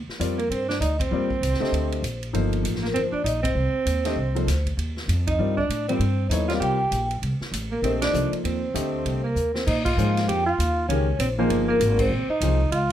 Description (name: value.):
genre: modal jazz.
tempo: 196 BPM.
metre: 4/4.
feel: swing 61% on 8ths.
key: C dorian, Bb dorian from 9.7 s.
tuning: A4 = 440 Hz.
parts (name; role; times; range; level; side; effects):
upright bass; bass; 0.0-12.9 s; G1 to Bb2; -25 LUFS; equal; none.
swinging big-band drum kit; drums; 0.1-12.8 s; crash cymbal, hi-hat, kick drum, ride cymbal, snare drum; -32 LUFS; equal; none.
warm grand piano; accompaniment; 0.2-12.6 s; D3 to Eb5; -28 LUFS; left 4 dB; none.
vibraphone with medium hard mallets; melody; 0.4-12.9 s; Bb4 to G5; -27 LUFS; left 1 dB; plate reverb.
mellow alto saxophone; second line; 0.4-12.9 s; Bb3 to G4; -28 LUFS; right 5 dB; none.
room: light reverb.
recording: close, detailed microphones.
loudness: -21 LUFS.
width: side -11 dB against mid.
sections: 0.0-9.7 A section; 9.7-12.9 B section.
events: band accent 1.0, 3.4, 5.2, 8.0, 9.8, 12.0; drum fill 9.4-9.7.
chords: 0.0 Cm9; 9.7 Bbm7.